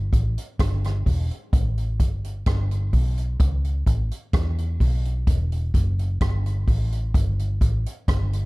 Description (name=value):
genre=dub reggae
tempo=64 BPM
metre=4/4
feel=straight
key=E dorian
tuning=A4 = 440 Hz
part: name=vintage muted fingered electric bass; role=bass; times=0.0-8.5 s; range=E1 to E2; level=-23 LUFS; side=equal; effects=none
part: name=vintage drum kit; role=drums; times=0.1-8.5 s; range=hi-hat, kick drum, rim click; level=-22 LUFS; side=equal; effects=none
room=little or no reverb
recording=dark, warm production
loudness=-20 LUFS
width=side -24 dB against mid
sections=0.0-8.5 A section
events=none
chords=none